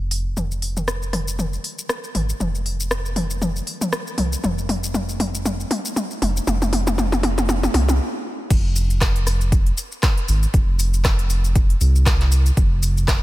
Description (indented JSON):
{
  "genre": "afro house",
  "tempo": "118 BPM",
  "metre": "4/4",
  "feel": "swing 57% on 16ths",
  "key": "F minor",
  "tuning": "A4 = 445 Hz",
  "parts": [
    { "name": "smooth synth bass", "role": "bass", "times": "0.0-13.2 s", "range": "F1 to C2", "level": "-20 LUFS", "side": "equal", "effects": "sidechain pumping" },
    { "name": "deep house drum kit", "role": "drums", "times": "0.1-13.2 s", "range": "crash cymbal, handclaps, hi-hat, rim click, shaker, toms", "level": "-23 LUFS", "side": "left 1 dB", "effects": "none" },
    { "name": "electronic kick drum", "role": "drums", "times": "8.5-13.2 s", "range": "none", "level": "-18 LUFS", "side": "equal", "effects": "none" }
  ],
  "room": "light reverb, digital ambience",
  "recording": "none",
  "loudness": "-18 LUFS",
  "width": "side -17 dB against mid",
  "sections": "0.4-8.5 A section; 8.5-13.2 B section",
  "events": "build-up 0.4-8.5; drum fill 0.4-8.0; stop 8.0-8.5; drop 8.5-13.2",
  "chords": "none",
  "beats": "| 0.37 0.88 1.39 1.90 | 2.40 2.91 3.42 3.93 | 4.44 4.95 5.46 5.96 | 6.47 6.98 7.49 8.00 | 8.51 9.01 9.52 10.03 | 10.54 11.05 11.56 12.06 | 12.57 13.08"
}